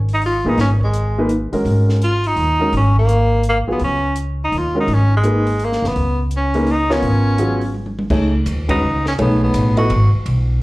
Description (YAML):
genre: modal jazz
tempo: 167 BPM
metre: 3/4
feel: swing 64% on 8ths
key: G# dorian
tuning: A4 = 440 Hz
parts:
  - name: upright bass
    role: bass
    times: 0.0-10.6 s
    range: F#1 to D#2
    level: -17 LUFS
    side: equal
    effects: none
  - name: warm tenor saxophone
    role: melody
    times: 0.1-10.1 s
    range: G#3 to F#4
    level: -19 LUFS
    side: equal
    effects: plate reverb, slapback echo
  - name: compact cocktail drum kit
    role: drums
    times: 0.1-10.4 s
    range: crash cymbal, hi-hat, kick drum, ride cymbal, snare drum, toms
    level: -29 LUFS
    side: equal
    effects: none
  - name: warm grand piano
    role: accompaniment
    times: 0.5-9.9 s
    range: F#3 to D#5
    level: -20 LUFS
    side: equal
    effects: plate reverb
room: moderate club reverb, RT60 0.5 s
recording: live gig heard through the venue's PA, club reverb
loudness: -14 LUFS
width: side -19 dB against mid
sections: 0.0-8.1 A section; 8.1-10.6 B section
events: drum fill 7.7-8.1; band accent 8.6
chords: 0.0 G#9sus4; 8.1 F#sus4 (rootless)